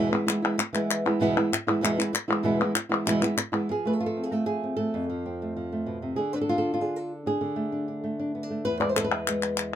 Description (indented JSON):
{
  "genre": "flamenco",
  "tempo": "193 BPM",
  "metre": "4/4",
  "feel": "straight",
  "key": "E phrygian dominant",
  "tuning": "A4 = 440 Hz",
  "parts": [
    { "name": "flamenco guitar", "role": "melody", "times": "0.0-9.8 s", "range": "E2 to D5", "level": "-25 LUFS", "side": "right 1 dB", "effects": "none" },
    { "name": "palmas hand claps", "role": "percussion", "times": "0.1-3.7, 8.8-9.7 s", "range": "none", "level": "-27 LUFS", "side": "left 5 dB", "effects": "none" }
  ],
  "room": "light reverb",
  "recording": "minimal, uncompressed stereo recording",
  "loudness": "-24 LUFS",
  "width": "side -10 dB against mid",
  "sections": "0.0-3.7 A section; 3.7-9.8 B section",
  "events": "none",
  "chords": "0.0 E; 3.7 F; 6.2 Dm; 8.7 E"
}